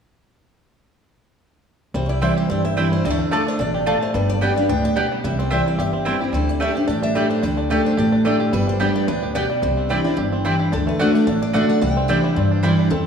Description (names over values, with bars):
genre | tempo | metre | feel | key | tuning
bluegrass | 219 BPM | 4/4 | swing 54% on 8ths | C major | A4 = 442 Hz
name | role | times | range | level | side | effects
bluegrass banjo | melody | 1.9-13.1 s | G3 to G4 | -28 LUFS | right 2 dB | none
picked steel-string acoustic guitar | accompaniment | 1.9-13.1 s | F2 to G4 | -20 LUFS | equal | none
upright bass | bass | 1.9-13.1 s | G1 to G2 | -25 LUFS | right 1 dB | none
picked steel-string acoustic guitar | melody | 2.0-13.0 s | A4 to G5 | -26 LUFS | left 2 dB | none
mandolin | stabs | 2.2-12.7 s | A3 to A5 | -25 LUFS | right 2 dB | none
room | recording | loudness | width
wet concert hall reverb, RT60 1.7 s | small room ambience | -17 LUFS | side -7 dB against mid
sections
1.9-10.7 A section; 10.7-13.1 B section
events
none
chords
1.9 C; 3.0 Dm; 4.1 G; 5.2 C; 6.3 Dsus4; 8.5 G; 9.6 Cadd9; 10.7 D; 11.8 Cadd9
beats
| 1.95 2.22 2.50 2.77 | 3.04 3.32 3.59 3.87 | 4.14 4.42 4.69 4.96 | 5.24 5.51 5.79 6.06 | 6.33 6.61 6.88 7.16 | 7.43 7.71 7.98 8.25 | 8.53 8.80 9.08 9.35 | 9.62 9.90 10.17 10.45 | 10.72 10.99 11.27 11.54 | 11.82 12.09 12.36 12.64 | 12.91